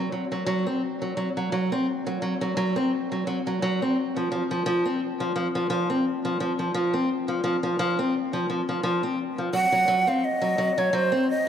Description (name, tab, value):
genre	folktronica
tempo	86 BPM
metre	4/4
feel	swing 56% on 16ths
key	unclear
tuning	A4 = 440 Hz
part	fingerpicked acoustic archtop guitar	arpeggios	0.0-11.3 s	F3 to C4	-24 LUFS	equal	analog delay
part	breathy jazz flute	melody	9.5-11.5 s	C5 to Gb5	-22 LUFS	right 2 dB	none
room	wet plate reverb, RT60 3.6 s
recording	dreamy mix soaked in reverb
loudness	-23 LUFS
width	side -9 dB against mid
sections	0.0-11.5 A section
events	none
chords	0.0 N.C.; 4.0 F5; 9.5 Ab7/Gb (rootless)